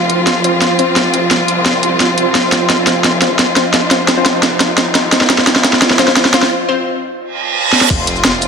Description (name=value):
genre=dark technical drum and bass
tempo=173 BPM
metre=4/4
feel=straight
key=unclear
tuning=A4 = 440 Hz
part: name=rich studio string section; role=sustained chords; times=0.0-8.5 s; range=F3 to F4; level=-17 LUFS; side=left 1 dB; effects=sidechain pumping
part: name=snarling distorted saw bass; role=bass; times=0.0-8.5 s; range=Eb1 to C2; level=-23 LUFS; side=equal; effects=none
part: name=riser, reverse cymbal and sub drop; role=sound effects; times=1.1-8.5 s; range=none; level=-20 LUFS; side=right 3 dB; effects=none
part: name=granular cloud pad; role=texture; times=0.0-6.5 s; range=F4 to F5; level=-20 LUFS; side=right 3 dB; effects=built-in reverb, sidechain pumping
part: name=drum and bass drum kit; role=drums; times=0.1-8.5 s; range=crash cymbal, hi-hat, shaker, snare drum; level=-12 LUFS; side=equal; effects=none
part: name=orchestra-hit-like synth stab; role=stabs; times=0.4-6.9 s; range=C4 to C5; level=-18 LUFS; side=left 4 dB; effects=built-in reverb, dub echo
part: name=electronic kick drum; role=drums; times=7.9-8.0 s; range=none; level=-17 LUFS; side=equal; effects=none
room=moderate lush hall reverb, RT60 1.8 s, digital ambience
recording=none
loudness=-10 LUFS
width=side -6 dB against mid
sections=0.0-7.9 A section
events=build-up 0.0-7.9; drum fill 0.0-6.5, 7.7; filter sweep on synth stab 0.0-7.9; riser 1.1-6.5; break 6.5-7.9; reverse cymbal 7.3-7.9; impact 7.9-8.5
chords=0.0 F5